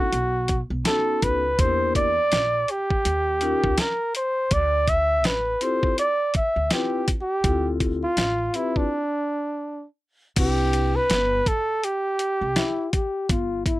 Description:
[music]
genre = hip hop, jazz-hop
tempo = 82 BPM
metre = 4/4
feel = swing 59% on 16ths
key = unclear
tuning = A4 = 440 Hz
[part]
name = mellow flugelhorn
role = melody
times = 0.0-12.9 s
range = D4 to E5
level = -22 LUFS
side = right 1 dB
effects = none
[part]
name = vibraphone with medium mallets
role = accompaniment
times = 0.0-10.9 s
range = Bb3 to B4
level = -27 LUFS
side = left 4 dB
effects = none
[part]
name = upright bass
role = bass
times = 0.1-13.8 s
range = G1 to E2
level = -27 LUFS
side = equal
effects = none
[part]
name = boom bap sampler-style drum kit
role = drums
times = 0.1-13.8 s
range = crash cymbal, hi-hat, kick drum, snare drum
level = -24 LUFS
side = equal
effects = none
[part]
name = mellow trombone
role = second line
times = 12.6-13.8 s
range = E4 to G4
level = -26 LUFS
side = left 4 dB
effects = none
[sound]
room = light reverb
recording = none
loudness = -20 LUFS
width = side -17 dB against mid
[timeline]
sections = 0.0-10.4 A section; 10.4-13.8 B section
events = break 8.9-10.4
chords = 0.1 B7; 1.6 Em7b5; 3.1 Eb9; 4.5 Dm11; 10.4 Cmaj9; 13.3 N.C.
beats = 0.13 0.86 | 1.59 2.32 3.05 3.78 | 4.52 5.25 5.98 6.71 | 7.44 8.17 8.91 9.64 | 10.37 11.10 11.83 12.56 | 13.30

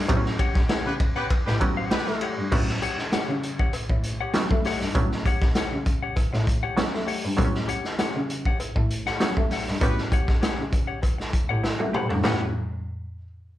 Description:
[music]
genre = funk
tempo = 99 BPM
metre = 4/4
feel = straight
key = A mixolydian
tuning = A4 = 439 Hz
[part]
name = rich cello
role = bass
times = 0.0-12.5 s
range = G2 to A3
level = -29 LUFS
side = equal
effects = none
[part]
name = muted clav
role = stabs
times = 0.1-12.5 s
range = F#3 to A4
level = -29 LUFS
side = right 3 dB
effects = overdrive, slapback echo
[part]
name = raw garage drum kit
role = drums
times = 0.1-12.4 s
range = china cymbal, crash cymbal, hi-hat, kick drum, ride cymbal, snare drum, toms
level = -24 LUFS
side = equal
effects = none
[part]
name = cowbell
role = percussion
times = 0.1-12.5 s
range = none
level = -37 LUFS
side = left 6 dB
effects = slapback echo
[part]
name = semi-hollow electric guitar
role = accompaniment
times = 0.4-12.4 s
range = G4 to F#5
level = -31 LUFS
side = left 8 dB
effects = slapback echo
[part]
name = warm horn section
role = second line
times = 0.9-2.4, 9.8-12.5 s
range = G3 to B4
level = -31 LUFS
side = equal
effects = slapback echo
[sound]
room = little or no reverb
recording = live gig heard through the venue's PA, club reverb, lossy compression artefacts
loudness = -22 LUFS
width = side -14 dB against mid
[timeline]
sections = 0.0-2.5 A section; 2.5-12.2 B section; 12.2-13.6 C section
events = band accent 9.8-12.2; drum fill 11.6-12.2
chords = 0.0 A13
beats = | 0.09 0.70 1.31 1.91 | 2.52 3.13 3.74 4.35 | 4.95 5.56 6.17 6.78 | 7.39 7.99 8.60 9.21 | 9.81 10.42 11.03 11.64 | 12.24

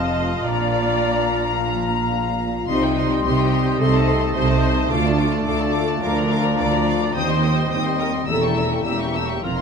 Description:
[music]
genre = classical, dramatic, fast romantic movement for symphony orchestra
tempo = 107 BPM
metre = 4/4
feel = straight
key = Bb major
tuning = A4 = 440 Hz
[part]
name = rich studio violin section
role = melody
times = 0.0-9.6 s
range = G5 to E6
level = -28 LUFS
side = left 5 dB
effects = none
[part]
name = dark clarinet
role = second line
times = 0.0-9.6 s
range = C4 to D4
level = -31 LUFS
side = left 2 dB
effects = none
[part]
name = rich symphonic violin section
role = second line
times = 0.0-9.6 s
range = A4 to Bb5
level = -32 LUFS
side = left 3 dB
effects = none
[part]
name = small flute group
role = second line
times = 0.0-9.6 s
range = G5 to C6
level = -30 LUFS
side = left 4 dB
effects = none
[part]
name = warm oboe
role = second line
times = 0.0-9.6 s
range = D5 to F5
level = -32 LUFS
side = right 2 dB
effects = none
[part]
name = rich symphonic viola section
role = accompaniment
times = 0.0-9.6 s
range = Eb4 to Eb5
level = -25 LUFS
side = right 1 dB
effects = none
[part]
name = warm bassoon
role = accompaniment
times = 0.0-9.6 s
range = F3 to Bb3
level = -32 LUFS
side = right 2 dB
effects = none
[part]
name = mellow French horn section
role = sustained chords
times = 0.0-9.6 s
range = F3 to F4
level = -28 LUFS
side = left 4 dB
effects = none
[part]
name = concert harp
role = arpeggios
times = 0.0-9.6 s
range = Bb2 to Eb5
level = -29 LUFS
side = left 7 dB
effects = none
[part]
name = clear symphonic double bass section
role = bass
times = 0.0-9.6 s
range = E1 to Eb2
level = -25 LUFS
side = right 4 dB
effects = none
[part]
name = rich symphonic cello section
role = bass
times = 0.0-9.6 s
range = D2 to C3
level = -24 LUFS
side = right 3 dB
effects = none
[sound]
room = wet recital hall reverb, RT60 1.4 s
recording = none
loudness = -18 LUFS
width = side -6 dB against mid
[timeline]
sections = 0.0-9.6 A section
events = none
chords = 0.4 Bb; 2.7 Cm; 3.8 Adim/C; 4.9 Dm; 6.0 Bb/D; 7.2 Cm/Eb; 8.3 Edim7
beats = | 0.45 1.01 1.57 2.12 | 2.69 3.25 3.81 4.36 | 4.92 5.47 6.03 6.59 | 7.16 7.72 8.28 8.85 | 9.44

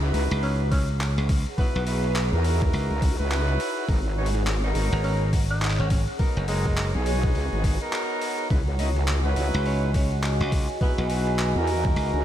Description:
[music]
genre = glitch hop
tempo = 104 BPM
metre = 4/4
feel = swing 60% on 16ths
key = C# dorian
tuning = A4 = 440 Hz
[part]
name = mellow horn section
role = stabs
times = 0.0-12.2 s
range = B3 to D#5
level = -31 LUFS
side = equal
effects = sidechain pumping, diffuse ambient delay
[part]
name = wobble bass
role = bass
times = 0.0-12.2 s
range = G#1 to E2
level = -24 LUFS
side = equal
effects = chorus, overdrive
[part]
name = boom bap sampler-style drum kit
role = drums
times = 0.0-12.2 s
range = handclaps, hi-hat, rim click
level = -33 LUFS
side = left 1 dB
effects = overdrive
[part]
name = granular cloud pad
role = texture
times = 0.0-12.2 s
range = G#4 to A#5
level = -34 LUFS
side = right 1 dB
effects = built-in reverb, analog chorus, sidechain pumping
[part]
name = glassy slap bass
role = bass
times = 0.3-12.1 s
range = F#1 to C#2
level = -24 LUFS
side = equal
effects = none
[part]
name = growling tenor saxophone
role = melody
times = 0.4-11.1 s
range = G#3 to D#4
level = -35 LUFS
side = equal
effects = diffuse ambient delay
[part]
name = electronic kick drum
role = drums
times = 0.7-11.9 s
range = none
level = -24 LUFS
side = equal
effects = overdrive
[part]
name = dark analog pad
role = sustained chords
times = 8.5-12.2 s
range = F#4 to G#5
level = -31 LUFS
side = right 2 dB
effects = chorus, vintage 12-bit sampler grit, sidechain pumping
[sound]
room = light reverb, digital ambience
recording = none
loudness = -22 LUFS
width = side -11 dB against mid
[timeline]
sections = 0.0-12.2 A section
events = break 7.9-8.5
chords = 0.0 C#m11; 3.9 G#m9; 8.5 C#m11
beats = 0.43 1.00 | 1.58 2.16 2.73 3.31 | 3.89 4.46 5.04 5.62 | 6.20 6.77 7.35 7.93 | 8.50 9.08 9.66 10.23 | 10.81 11.39 11.96

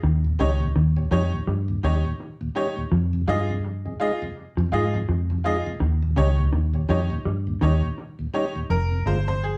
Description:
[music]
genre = reggae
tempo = 83 BPM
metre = 4/4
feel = swing 58% on 16ths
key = unclear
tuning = A4 = 440 Hz
[part]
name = mellow electric guitar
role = riff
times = 0.0-9.3 s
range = F2 to Ab3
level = -31 LUFS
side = equal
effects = dub echo
[part]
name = vintage muted fingered electric bass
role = bass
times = 0.0-9.6 s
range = F1 to Ab2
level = -25 LUFS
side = equal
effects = none
[part]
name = mellow tonewheel organ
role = accompaniment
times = 0.2-9.4 s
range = Eb2 to F4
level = -32 LUFS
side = equal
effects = slow rotary speaker
[part]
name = bright upright piano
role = stabs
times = 0.4-9.6 s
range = Eb4 to Eb5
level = -31 LUFS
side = equal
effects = none
[sound]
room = wet studio reverb, RT60 0.8 s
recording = band playing live in one room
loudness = -24 LUFS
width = mono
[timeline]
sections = 0.0-8.7 A section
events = none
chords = 0.0 Eb7; 2.9 Fm7; 5.8 Eb7; 8.7 Fm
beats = | 0.03 0.75 1.48 2.20 | 2.92 3.64 4.36 5.08 | 5.81 6.53 7.25 7.97 | 8.70 9.42

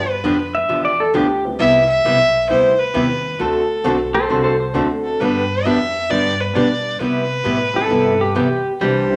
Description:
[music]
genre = country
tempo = 133 BPM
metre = 4/4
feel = swing 66% on 8ths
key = C major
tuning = A4 = 440 Hz
[part]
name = dark fiddle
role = melody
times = 0.0-9.2 s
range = A4 to E5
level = -20 LUFS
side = equal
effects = none
[part]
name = upright bass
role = bass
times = 0.0-9.2 s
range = B1 to C3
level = -30 LUFS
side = equal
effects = none
[part]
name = picked acoustic archtop guitar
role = accompaniment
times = 0.2-9.0 s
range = C3 to A4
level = -22 LUFS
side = equal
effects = none
[part]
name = pedal steel guitar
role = second line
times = 0.5-1.4, 4.1-4.8, 7.8-8.7 s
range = G4 to E5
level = -20 LUFS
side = equal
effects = none
[part]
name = dark upright piano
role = accompaniment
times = 1.4-9.2 s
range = G3 to B4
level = -28 LUFS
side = equal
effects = none
[part]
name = archtop guitar, miked and amplified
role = second line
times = 8.8-9.2 s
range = G3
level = -20 LUFS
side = equal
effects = none
[sound]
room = wet large studio reverb, RT60 1.1 s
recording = none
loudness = -17 LUFS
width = mono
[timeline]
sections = 0.0-9.2 A section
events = none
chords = 0.0 G7; 1.6 Cmaj7; 3.4 D7; 5.2 G; 7.0 Cmaj7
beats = 0.24 0.69 1.14 | 1.59 2.04 2.49 2.94 | 3.40 3.85 4.30 4.75 | 5.20 5.65 6.10 6.55 | 7.00 7.46 7.91 8.36 | 8.81

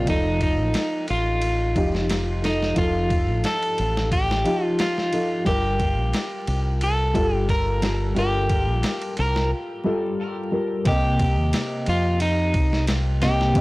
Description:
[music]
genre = trip hop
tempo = 89 BPM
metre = 4/4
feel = swing 54% on 16ths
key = C dorian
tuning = A4 = 440 Hz
[part]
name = electric guitar at the edge of break-up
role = melody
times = 0.0-13.6 s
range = Eb4 to Bb4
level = -25 LUFS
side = equal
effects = vintage 12-bit sampler grit, tape echo
[part]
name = felt-muted upright piano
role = accompaniment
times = 0.0-13.6 s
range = C3 to Eb5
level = -26 LUFS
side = equal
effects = harmonic tremolo
[part]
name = deep dub fingered electric bass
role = bass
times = 0.0-13.6 s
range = F1 to F2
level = -24 LUFS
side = equal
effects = none
[part]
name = dusty soul sampler-style drum kit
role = drums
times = 0.1-13.6 s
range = kick drum, ride cymbal, snare drum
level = -27 LUFS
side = equal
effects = small room ambience
[sound]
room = digital ambience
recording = dry, gritty hardware recording, transformer saturation, vinyl crackle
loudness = -20 LUFS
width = side -21 dB against mid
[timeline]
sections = 0.0-10.9 A section; 10.9-13.6 B section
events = break 9.5-10.9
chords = 0.1 F7; 5.5 Gm7; 10.9 Cm7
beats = | 0.07 0.75 1.42 2.10 | 2.77 3.45 4.12 4.79 | 5.47 6.14 6.82 7.49 | 8.16 8.84 9.51 10.19 | 10.86 11.54 12.21 12.88 | 13.56

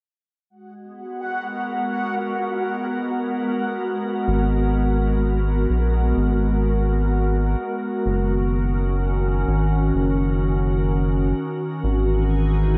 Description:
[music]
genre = IDM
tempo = 127 BPM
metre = 4/4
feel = swing 56% on 16ths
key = G# minor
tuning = A4 = 440 Hz
[part]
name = glassy FM pad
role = sustained chords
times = 0.9-12.8 s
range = D#3 to A#4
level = -26 LUFS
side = equal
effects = ensemble chorus, built-in reverb
[part]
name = bubbling stepped-filter texture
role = texture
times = 0.5-4.3 s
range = F#4 to F#5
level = -30 LUFS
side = equal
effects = chorus, built-in reverb
[part]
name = round analog bass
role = bass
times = 4.3-12.8 s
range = F#1 to A#1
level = -23 LUFS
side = equal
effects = none
[sound]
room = light reverb, digital ambience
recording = none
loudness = -22 LUFS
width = mono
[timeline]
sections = 0.5-4.3 A section; 4.3-12.8 B section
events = none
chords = 0.5 G#m9; 8.1 D#m7/F#; 11.8 Emaj9/G#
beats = | 0.50 0.97 1.44 1.92 | 2.39 2.86 3.33 3.81 | 4.28 4.75 5.22 5.70 | 6.17 6.64 7.11 7.59 | 8.06 8.53 9.00 9.47 | 9.95 10.42 10.89 11.37 | 11.84 12.31

